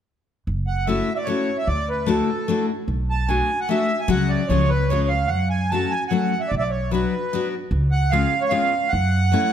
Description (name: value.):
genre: musette waltz.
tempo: 149 BPM.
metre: 3/4.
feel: straight.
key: F# minor.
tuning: A4 = 440 Hz.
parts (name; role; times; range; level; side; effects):
upright bass; bass; 0.5-9.3 s; F#1 to F#2; -22 LUFS; right 1 dB; none.
accordion; melody; 0.7-9.5 s; A4 to A5; -23 LUFS; right 3 dB; slapback echo.
picked steel-string acoustic guitar; accompaniment; 0.9-9.5 s; E#3 to F#4; -24 LUFS; left 5 dB; none.
room: light reverb.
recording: none.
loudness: -19 LUFS.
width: side -9 dB against mid.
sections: 0.5-9.5 A section.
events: none.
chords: 0.5 F#m7; 1.7 Dadd9; 2.9 Bm7; 4.1 C#sus4; 4.5 C#; 5.3 F#m; 6.5 Bm; 7.7 C#7; 8.9 F#m7.